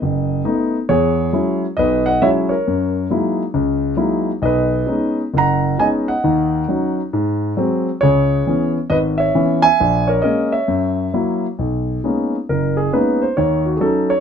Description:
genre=solo jazz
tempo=135 BPM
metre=4/4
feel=swing 65% on 8ths, rubato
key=unclear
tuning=A4 = 443 Hz
part: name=dark concert grand piano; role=solo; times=0.0-14.2 s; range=F#1 to A#5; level=-15 LUFS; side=equal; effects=none
room=light reverb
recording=close, detailed microphones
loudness=-15 LUFS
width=side -7 dB against mid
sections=0.0-11.6 A section; 11.6-14.2 B section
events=grand piano solo 11.6-14.2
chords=0.0 B7; 0.9 E69; 2.7 F#13; 4.5 B69; 6.3 D#m7; 7.1 G#7; 8.0 C#m7; 9.8 A#m7b5; 10.7 F#7; 11.6 Bmaj13; 13.4 D#m7b5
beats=0.03 0.47 | 0.90 1.35 1.79 2.23 | 2.67 3.11 3.56 4.00 | 4.46 4.91 5.36 5.81 | 6.25 6.70 7.14 7.58 | 8.02 8.46 8.90 9.34 | 9.78 10.22 10.68 11.13 | 11.59 12.04 12.48 12.93 | 13.37 13.81

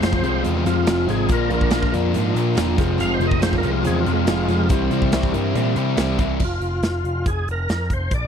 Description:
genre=classic rock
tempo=141 BPM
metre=4/4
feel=straight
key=F harmonic minor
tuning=A4 = 443 Hz
part: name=overdriven tonewheel organ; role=melody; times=0.0-8.3 s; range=Ab3 to F5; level=-26 LUFS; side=equal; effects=slow rotary speaker, chorus vibrato
part: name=picked twelve-string acoustic guitar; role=accompaniment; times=0.0-6.4 s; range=F2 to G4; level=-30 LUFS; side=left 1 dB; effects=none
part: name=warm upright piano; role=accompaniment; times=0.0-6.0 s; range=E4 to F5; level=-32 LUFS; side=left 10 dB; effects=none
part: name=string machine, violas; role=sustained chords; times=0.0-6.4 s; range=E3 to Bb4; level=-32 LUFS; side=left 1 dB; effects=none
part: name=crunchy overdriven guitar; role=riff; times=0.0-6.4 s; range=F2 to C4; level=-25 LUFS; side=right 12 dB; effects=none
part: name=overdriven semi-hollow guitar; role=riff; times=0.0-6.4 s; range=F2 to F4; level=-25 LUFS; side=left 13 dB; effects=none
part: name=overdriven picked electric bass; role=bass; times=0.0-8.3 s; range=E1 to C3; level=-23 LUFS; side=equal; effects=none
part: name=big rock drum kit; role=drums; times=0.0-8.2 s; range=crash cymbal, hi-hat, kick drum, snare drum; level=-23 LUFS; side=equal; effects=none
room=small room ambience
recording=dry, close 1970s-style studio recording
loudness=-18 LUFS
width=side -8 dB against mid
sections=0.0-6.4 A section; 6.4-8.3 B section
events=tonewheel organ solo 0.0-6.4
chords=0.0 Fm; 1.3 Bb; 2.8 Fm; 4.7 C; 6.4 Fmadd11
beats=0.02 0.45 0.87 | 1.30 1.73 2.15 2.58 | 3.00 3.43 3.85 4.28 | 4.70 5.13 5.55 5.98 | 6.41 6.83 7.26 7.69 | 8.11

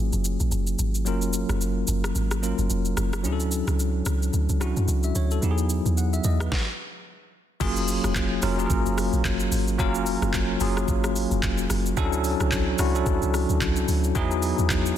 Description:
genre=amapiano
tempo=110 BPM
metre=4/4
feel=swing 58% on 16ths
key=F# major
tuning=A4 = 435 Hz
part: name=bell-like tine electric piano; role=accompaniment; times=0.0-15.0 s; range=F#3 to F#5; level=-26 LUFS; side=left 1 dB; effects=medium stereo tremolo, low-pass filter
part: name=deep log drum bass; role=bass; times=0.0-14.9 s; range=E#1 to F#2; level=-25 LUFS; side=equal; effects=none
part: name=smooth R&B drum kit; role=drums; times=0.1-15.0 s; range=crash cymbal, handclaps, hi-hat, kick drum, rim click, shaker, snare drum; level=-29 LUFS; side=equal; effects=soft clipping on snare
room=light reverb, digital ambience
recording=dense, heavily limited modern master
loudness=-22 LUFS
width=side -10 dB against mid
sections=0.0-7.6 A section; 7.6-15.0 B section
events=filter sweep on tine electric piano 0.0-7.6; stop 6.5-7.6; drop 7.6-15.0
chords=0.0 F#maj9; 3.2 Dmaj9; 5.4 Emaj9; 7.6 F#maj9; 12.0 Dmaj9; 14.2 Emaj9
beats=0.52 | 1.06 1.61 2.15 2.70 | 3.25 3.79 4.34 4.88 | 5.43 5.97 6.52 7.06 | 7.61 8.15 8.70 9.24 | 9.79 10.34 10.88 11.43 | 11.97 12.52 13.06 13.61 | 14.15 14.70

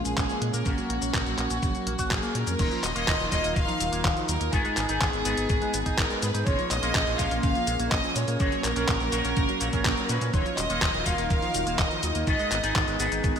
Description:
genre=italo disco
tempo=124 BPM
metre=4/4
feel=straight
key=Eb minor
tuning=A4 = 443 Hz
part: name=warm studio violin section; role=melody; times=0.0-13.0 s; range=Gb4 to F5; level=-30 LUFS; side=equal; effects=ping-pong delay
part: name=lush unison pad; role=sustained chords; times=0.0-13.4 s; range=Eb3 to Bb4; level=-32 LUFS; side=right 1 dB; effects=chorus
part: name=electric guitar with an envelope filter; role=stabs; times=0.0-13.4 s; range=Ab2 to Bb4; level=-34 LUFS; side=left 4 dB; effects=analog chorus
part: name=round analog bass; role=bass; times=0.0-13.3 s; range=Eb1 to Bb2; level=-31 LUFS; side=equal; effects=tube saturation
part: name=electric guitar with an envelope filter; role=arpeggios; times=0.1-13.4 s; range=Db3 to Gb4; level=-34 LUFS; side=right 4 dB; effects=lush chorus, digital delay
part: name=detuned 8-bit digital drum machine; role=drums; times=0.1-13.4 s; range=cabasa, crash cymbal, handclaps, hi-hat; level=-30 LUFS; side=left 1 dB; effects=gated reverb
part: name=electronic kick drum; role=drums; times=0.2-13.3 s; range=none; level=-28 LUFS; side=equal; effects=none
room=moderate lush hall reverb, RT60 1.9 s, digital ambience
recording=bright 1980s-style digital production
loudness=-23 LUFS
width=side -7 dB against mid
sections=0.0-2.6 A section; 2.6-13.4 B section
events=filter sweep on clean electric guitar 0.0-2.6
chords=0.0 Bbm7; 0.7 Gb/Bb; 2.6 Ebmadd9; 4.5 Abm; 6.5 Bbm7; 8.4 Gb/Bb; 10.3 Ebmadd9; 12.3 Abm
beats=0.17 | 0.66 1.14 1.63 2.11 | 2.60 3.08 3.56 4.05 | 4.53 5.01 5.50 5.98 | 6.47 6.95 7.43 7.92 | 8.40 8.88 9.37 9.85 | 10.34 10.82 11.30 11.79 | 12.27 12.76 13.24

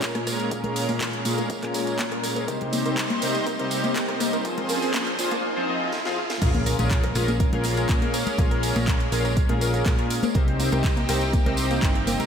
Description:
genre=progressive house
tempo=122 BPM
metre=4/4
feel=straight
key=Bb dorian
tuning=A4 = 445 Hz
part: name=lush unison pad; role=sustained chords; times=0.0-12.3 s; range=F2 to C5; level=-29 LUFS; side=right 1 dB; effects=chorus, sidechain pumping
part: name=chorused polysynth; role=stabs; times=0.0-12.1 s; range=Bb2 to F5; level=-28 LUFS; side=left 2 dB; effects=sidechain pumping, analog delay
part: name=electronic kick drum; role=drums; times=0.0-11.9 s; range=none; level=-24 LUFS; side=equal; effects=high-pass filter on kick, high-pass filter on room
part: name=house drum kit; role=drums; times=0.0-12.3 s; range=crash cymbal, handclaps, hi-hat, rim click, snare drum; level=-32 LUFS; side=equal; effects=sidechain pumping on hats, sidechain pumping on cymbals
part: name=tambourine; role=percussion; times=0.0-12.3 s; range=none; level=-36 LUFS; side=right 4 dB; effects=none
part: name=riser and impact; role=sound effects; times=1.1-8.4 s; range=none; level=-34 LUFS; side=right 1 dB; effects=none
part: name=analog pluck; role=arpeggios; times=0.2-12.3 s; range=Bb3 to Bb4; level=-30 LUFS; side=left 1 dB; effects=chorus, sidechain pumping, analog delay
part: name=cowbell, congas and bongos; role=percussion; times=0.3-12.3 s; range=none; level=-36 LUFS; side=left 2 dB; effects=none
part: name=plucky analog bass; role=bass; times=6.4-12.2 s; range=G1 to Bb2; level=-27 LUFS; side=equal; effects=sidechain pumping
room=moderate lush hall reverb, RT60 1.8 s, digital ambience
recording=dreamy mix soaked in reverb, high-pass filter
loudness=-21 LUFS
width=side -7 dB against mid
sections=0.0-6.4 A section; 6.4-12.3 B section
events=build-up 0.0-6.4; filter sweep on synth pluck 0.0-6.4; filter sweep on analog polysynth 0.0-6.4; drum fill 5.9-6.4; drop 6.4-12.3; impact 6.4-8.4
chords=0.0 Bbm7; 2.5 Cm; 4.5 Fm; 6.4 Bbm7; 10.4 Cm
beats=0.02 | 0.52 1.01 1.50 1.99 | 2.48 2.97 3.47 3.96 | 4.45 4.94 5.43 5.92 | 6.42 6.91 7.40 7.89 | 8.38 8.88 9.37 9.86 | 10.35 10.84 11.34 11.83

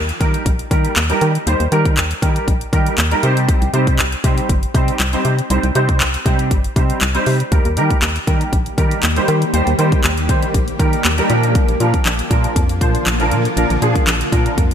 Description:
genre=dance-pop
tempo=119 BPM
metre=4/4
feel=straight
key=Eb major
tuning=A4 = 439 Hz
part: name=organ-like FM bass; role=bass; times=0.0-14.7 s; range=G1 to Eb3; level=-18 LUFS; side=equal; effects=sidechain pumping
part: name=house drum kit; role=drums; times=0.1-14.7 s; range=handclaps, hi-hat, kick drum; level=-17 LUFS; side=equal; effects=gated reverb
part: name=warm concert grand piano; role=accompaniment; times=0.2-14.6 s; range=F3 to C5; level=-19 LUFS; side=right 1 dB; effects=ensemble chorus, sidechain pumping
part: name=shimmering ambient pad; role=sustained chords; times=8.5-14.7 s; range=D3 to G4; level=-24 LUFS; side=equal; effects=chorus, built-in reverb, sidechain pumping
room=light reverb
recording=bright 1980s-style digital production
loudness=-14 LUFS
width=side -8 dB against mid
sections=0.0-14.7 A section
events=none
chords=0.0 Eb; 3.2 Cm; 7.5 Eb; 11.3 Bb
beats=0.46 0.96 | 1.47 1.97 2.48 2.98 | 3.48 3.99 4.49 5.00 | 5.50 6.01 6.51 7.01 | 7.52 8.02 8.53 9.03 | 9.54 10.04 10.54 11.05 | 11.55 12.06 12.56 13.06 | 13.57 14.07 14.58

